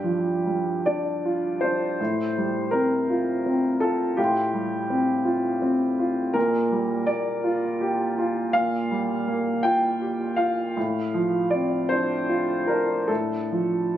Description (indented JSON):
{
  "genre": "neoclassical minimalist piano",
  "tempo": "45-56 BPM (dotted quarters)",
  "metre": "6/8",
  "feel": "rubato",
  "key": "unclear",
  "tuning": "A4 = 441 Hz",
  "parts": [
    { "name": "clear baby grand piano", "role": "solo", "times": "0.0-14.0 s", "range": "G2 to C6", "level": "-22 LUFS", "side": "equal", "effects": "none" }
  ],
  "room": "light reverb",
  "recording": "recorded on a phone in the room, club reverb, nothing above 7.6 kHz",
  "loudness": "-22 LUFS",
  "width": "side -11 dB against mid",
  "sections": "0.0-14.0 A section",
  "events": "none",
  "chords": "0.0 G7(no3); 2.0 Fadd9/A; 6.4 Bb6; 10.8 Dm7/A",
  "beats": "0.86 | 1.99 3.09 | 4.18 5.25 | 6.35 7.44 | 8.53 9.63 | 10.76 11.91 | 13.09"
}